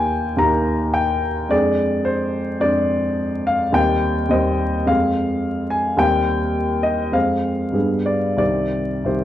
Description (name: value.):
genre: classical, romantic character piece for solo piano.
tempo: 87-110 BPM.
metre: 4/4.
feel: rubato.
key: C minor.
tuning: A4 = 440 Hz.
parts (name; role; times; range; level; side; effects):
warm grand piano; solo; 0.0-9.2 s; C2 to Bb5; -17 LUFS; left 1 dB; none.
room: light reverb.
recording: close, detailed microphones, vinyl crackle.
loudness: -17 LUFS.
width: side -12 dB against mid.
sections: 0.0-9.2 A section.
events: none.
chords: 0.0 Eb; 1.5 Ddim/F; 3.8 Cm/Eb; 4.9 Fm; 6.0 Cm/Eb; 7.1 Fm; 7.7 G7b9; 8.4 Cm.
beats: 0.40 0.95 | 1.52 2.07 2.63 3.19 | 3.77 4.33 4.89 5.45 | 6.00 6.56 7.15 7.75 | 8.39 9.07.